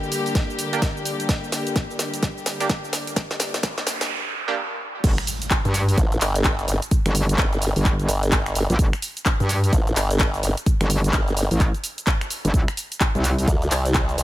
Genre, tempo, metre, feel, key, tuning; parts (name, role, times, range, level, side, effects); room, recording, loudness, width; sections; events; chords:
bass house; 128 BPM; 4/4; swing 61% on 16ths; G minor; A4 = 439 Hz
warm studio string section; sustained chords; 0.0-4.1 s; D3 to G4; -28 LUFS; left 2 dB; sidechain pumping
garage drum kit; drums; 0.0-14.2 s; cabasa, crash cymbal, finger snaps, handclaps, hi-hat, snare drum; -25 LUFS; equal; high-pass filter on hats, small room ambience, high-pass filter on snare, high-pass filter on perc, high-pass filter on cymbals
electronic kick drum; drums; 0.4-14.1 s; -21 LUFS; equal; small room ambience
band-passed chord stab; stabs; 0.7-4.5 s; Bb3 to G4; -28 LUFS; right 4 dB; chorus, sidechain pumping, tape echo
noise sweep and impact; sound effects; 3.7-6.9 s; -31 LUFS; right 2 dB
metallic wobble bass; bass; 5.0-13.5 s; G1 to G2; -20 LUFS; equal; distortion, chorus, tube saturation, sidechain pumping
formant-sweep wobble bass; bass; 6.0-14.2 s; G1 to D2; -22 LUFS; equal; chorus, tube saturation, sidechain pumping
little or no reverb; high-pass filter; -19 LUFS; side -15 dB against mid
0.0-5.0 A section; 5.0-14.2 B section
build-up 0.0-5.0; drum fill 0.0-4.1; filter sweep 0.0-5.0; noise sweep 3.7-5.0; break 4.1-5.0; drop 5.0-14.2; impact 5.0-6.9
0.0 Gm; 5.0 N.C.